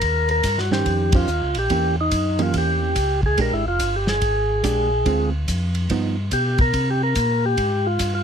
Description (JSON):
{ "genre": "soul jazz organ trio", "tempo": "143 BPM", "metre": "4/4", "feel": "swing 64% on 8ths", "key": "unclear", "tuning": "A4 = 441 Hz", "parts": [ { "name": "percussive tonewheel organ", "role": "melody", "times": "0.0-8.2 s", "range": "Eb4 to Bb4", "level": "-21 LUFS", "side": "left 1 dB", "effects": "slow rotary speaker, overdrive" }, { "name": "mellow tonewheel organ", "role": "bass", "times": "0.0-8.2 s", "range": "F1 to C3", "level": "-23 LUFS", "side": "equal", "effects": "slow rotary speaker" }, { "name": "warm soul drum kit", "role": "drums", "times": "0.0-8.1 s", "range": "hi-hat, kick drum, ride cymbal, snare drum", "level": "-26 LUFS", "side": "equal", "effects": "none" }, { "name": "hollow-body jazz guitar", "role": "accompaniment", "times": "0.7-6.2 s", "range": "D3 to C5", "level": "-24 LUFS", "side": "right 7 dB", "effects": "none" } ], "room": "little or no reverb", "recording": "close, detailed microphones", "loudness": "-18 LUFS", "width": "side -7 dB against mid", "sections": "0.0-8.2 A section", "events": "band accent 1.1", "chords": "0.0 Eb13; 1.7 Edim7; 3.4 Bb6; 5.1 Dm7b5; 5.9 Gaug7; 6.7 C7(no3)" }